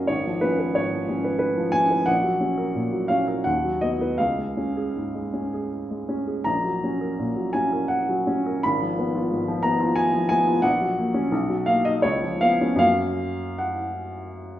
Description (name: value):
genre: classical, romantic character piece for solo piano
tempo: 74-92 BPM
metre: 3/4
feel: rubato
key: F# major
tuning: A4 = 440 Hz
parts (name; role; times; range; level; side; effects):
- warm upright piano; solo; 0.0-14.6 s; G#1 to Cb6; -21 LUFS; equal; none
room: wet large studio reverb, RT60 1.1 s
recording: heard from further back in the room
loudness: -21 LUFS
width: side -12 dB against mid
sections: 0.0-14.6 A section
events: none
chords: 0.1 C#7/G#; 2.1 F#/A#; 3.5 B/D#; 4.2 C#; 6.5 F#/A#; 8.6 Fdim/Ab; 10.6 F#/A#; 11.3 Bmaj7; 12.0 C#7; 12.8 F#